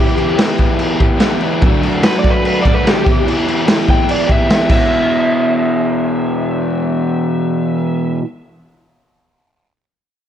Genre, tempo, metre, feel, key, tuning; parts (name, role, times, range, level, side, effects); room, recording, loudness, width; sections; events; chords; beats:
garage rock duo or trio; 146 BPM; 4/4; straight; E minor; A4 = 440 Hz
overdriven slide guitar; melody; 0.0-8.2 s; G4 to G5; -19 LUFS; equal; tape echo
crunchy overdriven guitar; riff; 0.0-8.2 s; E2 to G4; -16 LUFS; equal
raw garage drum kit; drums; 0.2-4.8 s; crash cymbal, kick drum, snare drum; -15 LUFS; equal; vintage 12-bit sampler grit
light reverb; cassette tape; -12 LUFS; side -10 dB against mid
0.0-4.9 A section; 4.9-8.2 B section
0.0 Em; 1.6 D; 3.0 Em; 4.7 E5
0.38 0.79 1.20 | 1.61 2.02 2.43 2.84 | 3.25 3.66 4.07 4.48 | 4.89 5.30 5.71 6.12 | 6.53 6.94 7.35 7.76